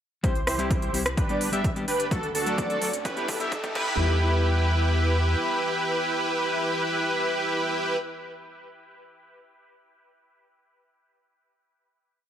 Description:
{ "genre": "EDM, festival progressive house", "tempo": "128 BPM", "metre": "4/4", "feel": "straight", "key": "E minor", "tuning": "A4 = 439 Hz", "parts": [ { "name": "mellow electric guitar", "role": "accompaniment", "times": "0.2-8.0 s", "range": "F#3 to G4", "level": "-34 LUFS", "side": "left 2 dB", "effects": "sidechain pumping, dub echo" }, { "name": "lush unison pad", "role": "sustained chords", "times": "0.2-8.0 s", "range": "C3 to B4", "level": "-37 LUFS", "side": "equal", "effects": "chorus, sidechain pumping" }, { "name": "wide unison lead", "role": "arpeggios", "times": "0.2-8.0 s", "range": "A4 to E5", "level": "-31 LUFS", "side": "equal", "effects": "lush chorus, sidechain pumping, dub echo" }, { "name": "dense compressed supersaw", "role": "riff", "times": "0.2-8.0 s", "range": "D4 to E5", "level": "-28 LUFS", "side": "right 1 dB", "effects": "sidechain pumping, low-pass filter, dub echo" }, { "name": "saturated sub bass", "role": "bass", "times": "0.2-5.4 s", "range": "G1 to E2", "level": "-26 LUFS", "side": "equal", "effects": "sidechain pumping" }, { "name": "big-room dance drum kit", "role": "drums", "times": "0.2-3.8 s", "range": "crash cymbal, hi-hat, rim click", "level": "-32 LUFS", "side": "equal", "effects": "overdrive" }, { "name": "electronic kick drum", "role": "drums", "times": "0.2-3.8 s", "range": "none", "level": "-28 LUFS", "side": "equal", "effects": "overdrive" }, { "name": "riser", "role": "sound effects", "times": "1.8-4.0 s", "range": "none", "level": "-39 LUFS", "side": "right 1 dB", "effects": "none" }, { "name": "breathy flute-like synth lead", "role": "melody", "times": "1.3-4.0 s", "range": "A4 to D5", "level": "-34 LUFS", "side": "right 1 dB", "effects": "analog chorus, dub echo" } ], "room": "light reverb, digital ambience", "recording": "high-pass filter", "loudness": "-23 LUFS", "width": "side -10 dB against mid", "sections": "0.2-4.0 build; 4.0-7.7 final hit", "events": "build-up 0.2-4.0; filter sweep on supersaw synth 0.2-4.0; filter sweep 0.2-4.0; riser 1.8-4.0; drum fill 2.1-4.0", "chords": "0.2 C; 1.2 G; 2.1 D; 3.1 Em" }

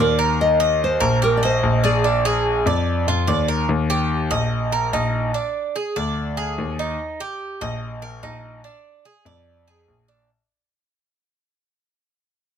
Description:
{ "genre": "latin, Cuban son and guajira", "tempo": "145 BPM", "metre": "4/4", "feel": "straight", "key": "Eb major", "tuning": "A4 = 440 Hz", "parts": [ { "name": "nylon-string guitar", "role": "melody", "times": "0.0-3.2 s", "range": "Bb4 to Eb5", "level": "-20 LUFS", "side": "equal", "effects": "slapback echo" }, { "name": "Cuban tres", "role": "arpeggios", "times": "0.0-10.3 s", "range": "D4 to Eb5", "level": "-24 LUFS", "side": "right 5 dB", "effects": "none" }, { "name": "warm grand piano", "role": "bass", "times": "0.0-10.2 s", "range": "Bb1 to F2", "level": "-21 LUFS", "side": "left 2 dB", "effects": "none" } ], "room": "little or no reverb", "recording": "close, detailed microphones", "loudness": "-18 LUFS", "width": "side -8 dB against mid", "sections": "0.0-3.7 A section; 3.7-10.3 B section", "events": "fade-out 3.7-10.3", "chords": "0.4 Eb; 2.0 Bb7; 3.7 Eb; 5.3 Ab5; 7.0 Eb; 8.6 Bb7" }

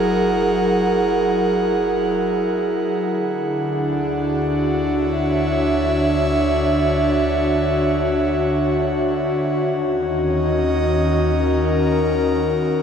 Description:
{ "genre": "ambient", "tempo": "free time", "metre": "none", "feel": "none", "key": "unclear", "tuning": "A4 = 440 Hz", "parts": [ { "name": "airy breathy pad", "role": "sustained chords", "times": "0.0-12.8 s", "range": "D3 to F#5", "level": "-17 LUFS", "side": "equal", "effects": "chorus" }, { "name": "round analog bass", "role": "bass", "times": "0.0-12.8 s", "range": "F#1 to D#2", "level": "-27 LUFS", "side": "equal", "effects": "none" } ], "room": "wet cathedral reverb, RT60 5.7 s", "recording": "none", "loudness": "-17 LUFS", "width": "side -7 dB against mid", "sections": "0.0-12.8 A section", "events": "fade-in on analog synth bass 0.0-12.8", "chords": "0.0 F#7; 3.1 Dmaj7; 9.6 D#m7" }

